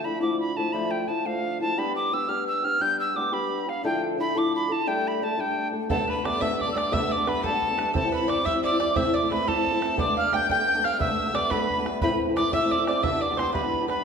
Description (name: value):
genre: celtic folk, Celtic jig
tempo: 117 BPM (dotted quarters)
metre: 6/8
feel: straight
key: G mixolydian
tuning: A4 = 440 Hz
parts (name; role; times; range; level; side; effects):
- mellow tin whistle; melody; 0.0-14.0 s; F5 to G6; -26 LUFS; right 1 dB; none
- fingerpicked old ladder-braced acoustic guitar; accompaniment; 0.0-14.0 s; D2 to A4; -27 LUFS; left 2 dB; none
- clear fiddle; second line; 5.9-14.0 s; A4 to G5; -34 LUFS; left 3 dB; none
- open-back banjo; second line; 5.9-14.0 s; A4 to G5; -32 LUFS; right 4 dB; none
- bodhran; percussion; 5.9-14.0 s; none; -34 LUFS; right 3 dB; none
room: wet recital hall reverb, RT60 1.6 s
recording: recorded in a church or concert hall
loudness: -22 LUFS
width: side -6 dB against mid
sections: 0.0-5.9 A section; 5.9-14.0 B section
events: none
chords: 0.0 Dmadd9; 1.8 G; 3.8 Dmadd9; 4.9 Gsus2; 5.9 Gadd9; 7.9 C; 9.0 Am; 10.0 Gadd9; 12.0 Am; 13.0 G6